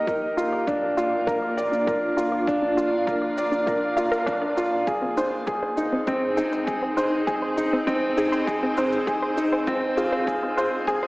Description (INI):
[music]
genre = piano and strings electronica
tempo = 100 BPM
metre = 4/4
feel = straight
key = unclear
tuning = A4 = 440 Hz
[part]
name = granular cloud pad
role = sustained chords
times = 0.0-11.1 s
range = Bb3 to Ab4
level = -29 LUFS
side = equal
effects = built-in reverb, wide subtle chorus, sidechain pumping
[part]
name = analog pluck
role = arpeggios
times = 0.0-11.1 s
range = C4 to F5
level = -30 LUFS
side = equal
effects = chorus, sidechain pumping, diffuse ambient delay
[part]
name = warm upright piano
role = riff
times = 0.0-11.1 s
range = C4 to D5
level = -23 LUFS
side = equal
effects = diffuse ambient delay
[part]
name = electronic kick drum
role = drums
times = 0.1-11.0 s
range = none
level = -36 LUFS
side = equal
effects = overdrive, studio reverb
[part]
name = shaker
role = drums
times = 0.1-11.0 s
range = none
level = -52 LUFS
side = equal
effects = overdrive, high-pass filter on perc, studio reverb
[part]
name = round analog bass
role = bass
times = 0.4-10.8 s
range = none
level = barely audible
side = none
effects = none
[sound]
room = wet plate reverb, RT60 2.2 s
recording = dreamy mix soaked in reverb, high-pass filter, AM radio sound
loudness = -21 LUFS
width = side -22 dB against mid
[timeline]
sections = 0.0-11.1 A section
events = build-up 0.0-11.1; filter sweep on synth arpeggio sound 0.0-11.1; filter sweep 0.0-11.1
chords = 0.1 Bb; 4.9 Ab; 9.7 Fm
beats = | 0.08 0.68 1.28 1.88 | 2.48 3.08 3.68 4.28 | 4.88 5.48 6.08 6.68 | 7.28 7.88 8.48 9.08 | 9.68 10.28 10.88